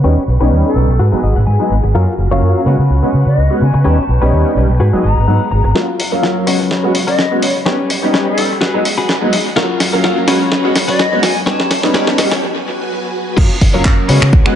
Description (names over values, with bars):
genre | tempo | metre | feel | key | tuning
filtered disco house | 126 BPM | 4/4 | swing 54% on 16ths | F# major | A4 = 438 Hz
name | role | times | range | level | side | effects
clear baby grand piano | accompaniment | 0.0-14.5 s | F#3 to E#5 | -18 LUFS | right 1 dB | phaser, vintage 12-bit sampler grit, sidechain pumping, low-pass filter
string machine, full ensemble | sustained chords | 0.0-14.6 s | F#3 to C#6 | -22 LUFS | equal | ensemble chorus, vintage 12-bit sampler grit, sidechain pumping, low-pass filter
twelve-string electric guitar | riff | 0.0-14.6 s | C#4 to A#5 | -20 LUFS | left 4 dB | sidechain pumping, low-pass filter, dub echo
overdriven fingered electric bass | bass | 0.0-14.5 s | F#1 to C#3 | -14 LUFS | equal | tube saturation, sidechain pumping, high-pass filter, low-pass filter
silver concert flute | melody | 0.6-11.8 s | A4 to A#5 | -22 LUFS | left 3 dB | sidechain pumping, low-pass filter, dub echo
dusty soul sampler-style drum kit | drums | 5.8-14.5 s | crash cymbal, finger snaps, handclaps, hi-hat, snare drum | -17 LUFS | equal | high-pass filter on snare, small room reverb, sidechain pumping on hats, high-pass filter on hats, sidechain pumping on cymbals, high-pass filter on cymbals, dub echo
electronic kick drum | drums | 13.4-14.4 s | none | -10 LUFS | equal | small room reverb
room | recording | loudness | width
light reverb, digital ambience | echo-heavy mix, nothing above 10.7 kHz | -11 LUFS | side -9 dB against mid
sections
0.0-5.8 A section; 5.8-13.4 B section; 13.4-14.6 C section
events
filter sweep 0.0-5.8, 5.8-13.4; clean electric guitar fill 1.0-1.9, 4.8-5.8; build-up 5.8-13.4; drum fill 5.8-12.4; break 12.4-13.4; drop 13.4-14.6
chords
0.0 D#aug7; 1.0 G#m7; 1.9 F#maj7; 2.7 C#7sus4; 3.9 D#aug7; 4.8 G#m7; 5.8 F#maj7; 6.5 C#7sus4; 7.7 D#aug7; 8.6 G#m7; 9.6 F#maj7; 10.3 C#7sus4; 11.5 D#aug7; 12.4 G#m7; 13.4 F#maj7